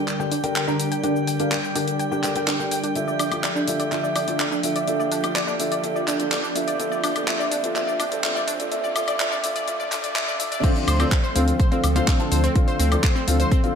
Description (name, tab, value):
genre	progressive house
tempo	125 BPM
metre	4/4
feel	straight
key	unclear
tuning	A4 = 440 Hz
part	airy breathy pad	sustained chords	0.0-13.8 s	D2 to E5	-29 LUFS	equal	chorus, sidechain pumping
part	felt-muted upright piano	stabs	0.0-13.8 s	D3 to Bb5	-26 LUFS	left 1 dB	sidechain pumping, low-pass filter, tape echo
part	riser	sound effects	2.7-10.6 s	none	-37 LUFS	right 2 dB	none
part	drifting glass-harmonics texture	texture	0.0-10.6 s	G4 to G5	-34 LUFS	right 3 dB	chorus, built-in reverb, sidechain pumping
part	deep house drum kit	drums	0.1-13.7 s	cabasa, crash cymbal, handclaps, hi-hat, woodblock	-27 LUFS	left 1 dB	overdrive
part	analog pluck	arpeggios	0.2-13.6 s	C4 to C6	-27 LUFS	equal	chorus, sidechain pumping, tape echo
part	electronic kick drum	drums	10.6-13.6 s	none	-20 LUFS	equal	none
part	saturated sub bass	bass	10.9-13.4 s	D2	-21 LUFS	equal	sidechain pumping
room	moderate digital room reverb, RT60 1.1 s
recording	high-pass filter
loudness	-20 LUFS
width	side -7 dB against mid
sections	0.0-10.6 A section; 10.6-13.8 B section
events	build-up 0.0-10.6; filter sweep on synth pluck 0.0-10.6; filter sweep on analog synth pad 0.0-10.6; riser 2.7-10.6; drop 10.6-13.8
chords	0.0 Gm/D; 3.0 Dmadd9; 6.8 Bb/D; 10.6 F/D